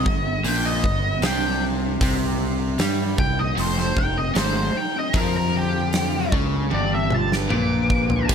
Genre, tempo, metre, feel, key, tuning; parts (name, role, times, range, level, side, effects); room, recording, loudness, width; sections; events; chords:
blues rock power trio and southern rock; 76 BPM; 4/4; straight; A4 = 440 Hz
octave-fuzz lead guitar; melody; 0.0-8.3 s; G4 to D6; -25 LUFS; equal; distortion
lead guitar through a small cranked amp; second line; 0.0-8.3 s; D3 to B4; -32 LUFS; right 2 dB; overdrive, digital delay
overdriven electric guitar; riff; 0.0-8.3 s; F2 to G3; -25 LUFS; left 1 dB
overdriven fingered electric bass; bass; 0.0-8.3 s; F1 to G2; -26 LUFS; equal
huge arena drum kit; drums; 0.1-8.3 s; crash cymbal, hi-hat, kick drum, snare drum, toms; -24 LUFS; equal
studio reverb; -19 LUFS; side -7 dB against mid
0.0-8.3 A section
drum fill 6.7-8.3
0.0 G; 2.0 C5; 3.6 F7#9; 5.1 G7